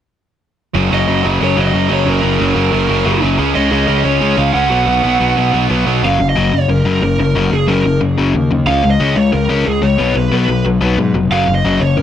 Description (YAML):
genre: punk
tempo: 182 BPM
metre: 4/4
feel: straight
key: F# major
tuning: A4 = 440 Hz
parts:
  - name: distorted electric guitar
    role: riff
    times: 0.7-6.0 s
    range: F#2 to C#4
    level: -18 LUFS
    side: right 17 dB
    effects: overdrive
  - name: overdriven electric guitar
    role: riff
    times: 0.7-12.0 s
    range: F#2 to C#4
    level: -16 LUFS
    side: left 5 dB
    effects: none
  - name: fuzz picked electric bass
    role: bass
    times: 0.7-12.0 s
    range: E#1 to G#2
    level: -17 LUFS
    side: right 1 dB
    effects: overdrive
  - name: lead guitar through a small cranked amp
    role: melody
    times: 0.9-12.0 s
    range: G#4 to F#5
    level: -17 LUFS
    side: right 1 dB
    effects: overdrive, tape echo
room: little or no reverb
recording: none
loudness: -11 LUFS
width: side -10 dB against mid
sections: 0.7-6.0 A section; 6.0-12.0 B section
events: none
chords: 0.7 F#; 3.4 C#5; 4.7 B5; 6.0 F#; 8.7 C#5; 10.0 B5; 11.3 F#5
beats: | 0.75 1.08 1.41 1.74 | 2.07 2.40 2.73 3.06 | 3.39 3.72 4.05 4.38 | 4.71 5.04 5.38 5.71 | 6.04 6.37 6.69 7.02 | 7.35 7.68 8.01 8.34 | 8.67 9.00 9.33 9.66 | 9.99 10.32 10.65 10.98 | 11.32 11.65 11.98